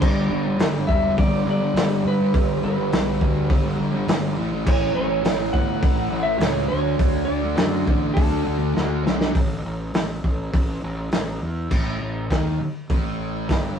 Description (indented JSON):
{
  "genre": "garage rock duo or trio",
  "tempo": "102 BPM",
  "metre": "4/4",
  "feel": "straight",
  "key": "A mixolydian",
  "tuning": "A4 = 441 Hz",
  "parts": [
    { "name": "clean lap steel guitar", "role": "melody", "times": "0.0-9.0 s", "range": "A4 to F#5", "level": "-26 LUFS", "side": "right 2 dB", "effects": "none" },
    { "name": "fuzz guitar", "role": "riff", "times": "0.0-13.8 s", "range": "G2 to D4", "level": "-24 LUFS", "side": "equal", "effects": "distortion" },
    { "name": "fuzz fingered electric bass", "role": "bass", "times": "0.0-13.8 s", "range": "E1 to G2", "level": "-27 LUFS", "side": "equal", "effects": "overdrive" },
    { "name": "crunchy breakbeat drum kit", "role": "drums", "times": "0.0-13.6 s", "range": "crash cymbal, hi-hat, kick drum, snare drum", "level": "-22 LUFS", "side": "equal", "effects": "none" }
  ],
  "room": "moderate studio reverb, RT60 0.5 s",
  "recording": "rough rehearsal-room recording",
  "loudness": "-19 LUFS",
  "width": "side -8 dB against mid",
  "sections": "0.0-9.4 A section; 9.4-11.7 B section; 11.7-13.8 C section",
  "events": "drum fill 8.8-9.4",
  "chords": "0.0 G; 4.4 A; 6.7 D5; 9.4 A5; 11.7 Gsus2"
}